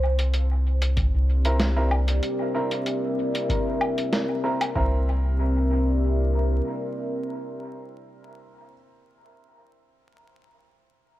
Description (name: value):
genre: ambient dub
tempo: 95 BPM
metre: 4/4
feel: swing 54% on 16ths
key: C mixolydian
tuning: A4 = 442 Hz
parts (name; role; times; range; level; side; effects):
- deep dark ambient pad; sustained chords; 0.0-8.0 s; C4 to E5; -28 LUFS; left 1 dB; chorus, built-in reverb
- soft dub sub bass; bass; 0.0-6.6 s; C2; -22 LUFS; equal; none
- lo-fi sampler-style drum kit; drums; 0.2-4.7 s; hi-hat, snare drum, woodblock; -29 LUFS; equal; cassette tape, dub echo
- electronic kick drum; drums; 1.0-4.9 s; none; -28 LUFS; equal; cassette tape
- clear upright piano; stabs; 1.5-8.7 s; C4 to Bb4; -32 LUFS; right 1 dB; low-pass filter, dub echo
room: light reverb, digital ambience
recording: home recording on cassette, vinyl crackle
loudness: -22 LUFS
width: side -15 dB against mid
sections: 0.0-4.8 A section; 4.8-7.3 B section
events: none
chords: 0.0 C7